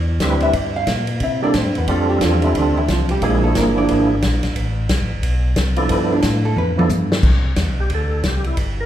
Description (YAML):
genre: soul jazz organ trio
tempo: 179 BPM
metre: 4/4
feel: swing 62% on 8ths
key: C major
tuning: A4 = 439 Hz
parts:
  - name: tonewheel organ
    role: bass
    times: 0.0-8.9 s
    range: G1 to C3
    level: -20 LUFS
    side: equal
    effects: slow rotary speaker
  - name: percussive tonewheel organ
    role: melody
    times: 0.2-8.9 s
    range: F3 to B4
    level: -21 LUFS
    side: right 2 dB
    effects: slow rotary speaker, overdrive, chorus vibrato
  - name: vintage drum kit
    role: drums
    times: 0.2-8.7 s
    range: crash cymbal, hi-hat, kick drum, ride cymbal, snare drum, toms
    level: -22 LUFS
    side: equal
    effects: none
  - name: archtop guitar, miked and amplified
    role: accompaniment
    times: 0.4-6.7 s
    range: D3 to F5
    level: -21 LUFS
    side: right 1 dB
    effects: none
room: wet recital hall reverb, RT60 1.8 s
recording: recorded in a church or concert hall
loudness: -15 LUFS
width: side -11 dB against mid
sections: 0.0-7.2 A section; 7.2-8.9 A section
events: hollow-body jazz guitar solo 0.0-7.2; drum fill 6.6-7.2; tonewheel organ solo 7.2-8.9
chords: 0.0 Cmaj9; 0.5 Gm; 1.2 C13; 1.9 F69; 3.2 Bb7#11; 4.6 Am7; 5.9 G13; 7.2 Cmaj9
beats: 0.21 | 0.54 0.88 1.21 1.55 | 1.88 2.22 2.55 2.88 | 3.22 3.56 3.89 4.22 | 4.56 4.89 5.23 5.56 | 5.90 6.23 6.57 6.90 | 7.23 7.57 7.90 8.24 | 8.57